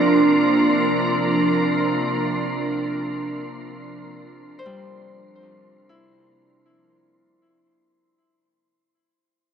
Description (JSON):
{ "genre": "ambient", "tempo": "free time", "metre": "none", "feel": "none", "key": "Bb lydian", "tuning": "A4 = 440 Hz", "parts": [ { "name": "soft additive organ-like pad", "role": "sustained chords", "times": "0.0-6.6 s", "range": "C3 to Bb4", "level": "-19 LUFS", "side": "right 1 dB", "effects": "ensemble chorus, built-in reverb" }, { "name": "Celtic harp", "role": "arpeggios", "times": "0.0-9.0 s", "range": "G3 to D5", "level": "-45 LUFS", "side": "left 2 dB", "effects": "none" }, { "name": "bowed-like drone", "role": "drone", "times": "0.5-6.6 s", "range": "none", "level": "barely audible", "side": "none", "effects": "none" }, { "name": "wind-like tuned noise texture", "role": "texture", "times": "0.0-6.6 s", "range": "C6", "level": "-28 LUFS", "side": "equal", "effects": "built-in reverb" } ], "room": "wet concert hall reverb, RT60 2.1 s", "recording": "worn, warbling old tape, cassette tape, warbly pitch drift", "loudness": "-18 LUFS", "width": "side -7 dB against mid", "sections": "0.0-6.5 A section", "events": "fade-out 0.0-6.5", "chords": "0.0 Bbadd9" }